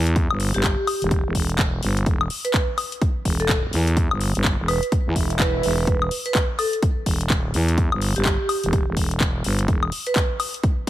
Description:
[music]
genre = bass house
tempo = 126 BPM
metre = 4/4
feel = swing 61% on 16ths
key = E minor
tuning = A4 = 440 Hz
[part]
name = growling FM bass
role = bass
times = 0.0-10.9 s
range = E1 to E2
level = -22 LUFS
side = equal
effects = tube saturation, sidechain pumping
[part]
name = house drum kit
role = drums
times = 0.1-10.9 s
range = handclaps, hi-hat, woodblock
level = -26 LUFS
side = left 2 dB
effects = overdrive, small room reverb
[part]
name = electronic kick drum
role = drums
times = 0.2-10.9 s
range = none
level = -22 LUFS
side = equal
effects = overdrive, small room reverb
[part]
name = vibraphone with hard mallets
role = melody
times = 0.5-10.2 s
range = G4 to B4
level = -26 LUFS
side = right 1 dB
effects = ping-pong delay
[part]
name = swell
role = sound effects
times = 5.1-5.9 s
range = none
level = -31 LUFS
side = right 4 dB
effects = none
[sound]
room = little or no reverb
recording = heavily compressed radio sound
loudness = -19 LUFS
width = side -14 dB against mid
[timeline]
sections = 0.0-10.9 A section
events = swell 5.1-5.9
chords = 0.0 Em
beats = | 0.16 0.64 1.11 1.59 | 2.06 2.54 3.02 3.49 | 3.97 4.45 4.92 5.40 | 5.87 6.35 6.83 7.30 | 7.78 8.25 8.73 9.21 | 9.68 10.16 10.63

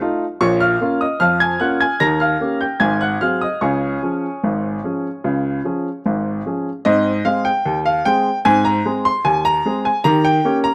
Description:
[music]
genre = ragtime piano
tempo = 75 BPM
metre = 2/4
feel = straight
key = Db major, Ab major from 6.9 s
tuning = A4 = 440 Hz
[part]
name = clear upright piano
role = solo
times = 0.0-10.7 s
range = Ab1 to Bb6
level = -18 LUFS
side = equal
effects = none
[sound]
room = little or no reverb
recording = close, detailed microphones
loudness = -18 LUFS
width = mono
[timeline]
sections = 0.0-6.9 A section; 6.9-10.7 B section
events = none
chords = 0.4 Bbm; 2.0 Eb7; 2.8 Ab7; 3.6 Db; 6.9 Ab; 10.1 Eb7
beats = | 0.42 1.21 | 2.01 2.81 | 3.62 4.43 | 5.24 6.05 | 6.86 7.66 | 8.46 9.25 | 10.05

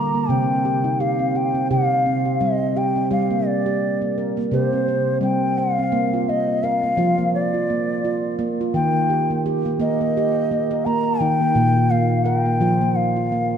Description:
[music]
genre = world meditative, meditative tuned percussion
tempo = 85 BPM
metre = 4/4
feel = swing 56% on 16ths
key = unclear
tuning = A4 = 441 Hz
[part]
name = bansuri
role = melody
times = 0.0-13.6 s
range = C5 to Bb5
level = -22 LUFS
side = left 2 dB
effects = none
[part]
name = handpan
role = arpeggios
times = 0.0-13.6 s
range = Bb2 to C5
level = -20 LUFS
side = right 1 dB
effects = none
[sound]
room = wet echo chamber reverb, RT60 2.2 s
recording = dark, warm production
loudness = -18 LUFS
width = side -8 dB against mid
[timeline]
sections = 0.0-5.9 A section; 5.9-13.6 B section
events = none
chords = 0.3 C5; 3.1 Gm; 4.5 C5; 5.9 Bb; 8.7 Eb; 11.5 Bb5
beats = | 0.29 1.00 1.70 2.41 | 3.11 3.82 4.52 5.22 | 5.92 6.63 7.33 8.03 | 8.73 9.44 10.14 10.85 | 11.55 12.25 12.96

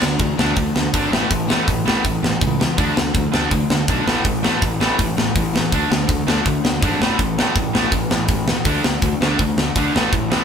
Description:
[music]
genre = punk rock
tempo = 163 BPM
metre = 4/4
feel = straight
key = unclear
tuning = A4 = 439 Hz
[part]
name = sludgy distorted guitar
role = riff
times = 0.0-10.4 s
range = A2 to D4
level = -22 LUFS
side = left 7 dB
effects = overdrive
[part]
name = sludgy distorted guitar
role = riff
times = 0.0-10.4 s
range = A2 to D4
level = -23 LUFS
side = right 9 dB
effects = overdrive
[part]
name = fuzz picked electric bass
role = bass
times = 0.0-10.4 s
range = G#1 to D2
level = -24 LUFS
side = equal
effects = overdrive
[part]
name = tight metal drum kit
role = drums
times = 0.0-10.4 s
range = hi-hat, kick drum, snare drum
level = -19 LUFS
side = equal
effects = none
[sound]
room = light reverb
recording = band playing live in one room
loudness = -16 LUFS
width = side -7 dB against mid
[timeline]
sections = 0.0-10.4 A section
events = none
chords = 0.0 D5; 1.1 A; 2.8 D5; 4.1 A5; 5.7 D5; 7.0 A5; 8.7 D5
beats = 0.21 0.58 0.95 | 1.32 1.68 2.05 2.42 | 2.79 3.16 3.52 3.89 | 4.26 4.63 5.00 5.36 | 5.73 6.10 6.47 6.83 | 7.20 7.57 7.93 8.30 | 8.67 9.04 9.40 9.77 | 10.14

